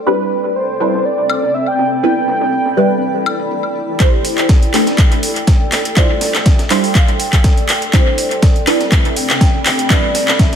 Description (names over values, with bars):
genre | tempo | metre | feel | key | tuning
deep house | 122 BPM | 4/4 | swing 54% on 16ths | A minor | A4 = 440 Hz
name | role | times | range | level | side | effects
filtered dub chord stab | stabs | 0.0-10.6 s | G3 to C5 | -18 LUFS | right 1 dB | phaser, wide subtle chorus, sidechain pumping, analog delay
granular cloud pad | texture | 0.0-10.6 s | C4 to C6 | -21 LUFS | left 1 dB | built-in reverb, sidechain pumping
warm velvety synth lead | melody | 0.1-10.6 s | B4 to G5 | -20 LUFS | right 1 dB | chorus, analog delay
breakbeat sampler-style drum kit | drums | 0.1-10.6 s | hi-hat, snare drum, tambourine | -27 LUFS | equal | high-pass filter on perc, low-pass filter on perc, studio reverb, high-pass filter on snare, low-pass filter on snare, high-pass filter on hats, low-pass filter on hats
deep house drum kit | drums | 1.3-10.6 s | handclaps, hi-hat, woodblock | -18 LUFS | left 1 dB | overdrive, studio reverb, analog delay
electronic kick drum | drums | 4.0-10.5 s | none | -11 LUFS | equal | overdrive, studio reverb
room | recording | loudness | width
light reverb | echo-heavy mix | -11 LUFS | side -8 dB against mid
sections
0.0-4.0 A section; 4.0-10.6 B section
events
filter sweep on synth stab 0.0-4.0; build-up 4.0-10.6; drum fill 4.0-10.6; filter sweep 4.0-10.6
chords
0.1 Cmaj9; 2.0 Em7; 4.0 Am11; 6.0 Dm11; 7.9 Cmaj9; 9.9 Em7